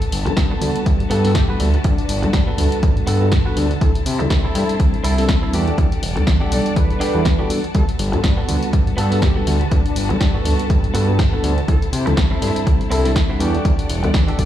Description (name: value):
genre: filtered disco house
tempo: 122 BPM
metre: 4/4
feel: swing 57% on 16ths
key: G major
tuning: A4 = 440 Hz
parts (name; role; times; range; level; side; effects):
- clear symphonic string section; sustained chords; 0.0-14.5 s; G3 to A5; -30 LUFS; left 2 dB; sidechain pumping, low-pass filter
- punchy analog drum machine; drums; 0.0-14.5 s; hi-hat, snare drum; -27 LUFS; left 1 dB; overdrive, sidechain pumping on hats
- fat analog bass; bass; 0.1-14.5 s; E1 to C3; -19 LUFS; equal; sidechain pumping, low-pass filter
- mellow tine electric piano; accompaniment; 0.3-14.5 s; G3 to F#5; -24 LUFS; equal; phaser, sidechain pumping, low-pass filter
- direct-recorded clean electric guitar; riff; 0.3-14.5 s; B3 to B4; -27 LUFS; right 1 dB; vintage 12-bit sampler grit, sidechain pumping, low-pass filter
- electronic kick drum; drums; 0.4-14.5 s; none; -17 LUFS; equal; overdrive
- analog synth brass; melody; 1.1-14.5 s; D4 to D5; -28 LUFS; left 1 dB; chorus, sidechain pumping, low-pass filter, digital delay
room: little or no reverb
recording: played on a big sound system in a bare room, large studio reverb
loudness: -15 LUFS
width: side -12 dB against mid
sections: 0.0-14.5 A section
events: none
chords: 0.0 Gmaj9; 3.8 C6; 5.5 Em11; 7.7 Gmaj9; 11.7 C6; 13.4 Em11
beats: 0.37 0.86 1.35 | 1.85 2.34 2.83 3.32 | 3.81 4.30 4.80 5.29 | 5.78 6.27 6.76 7.26 | 7.75 8.24 8.73 9.22 | 9.71 10.21 10.70 11.19 | 11.68 12.17 12.67 13.16 | 13.65 14.14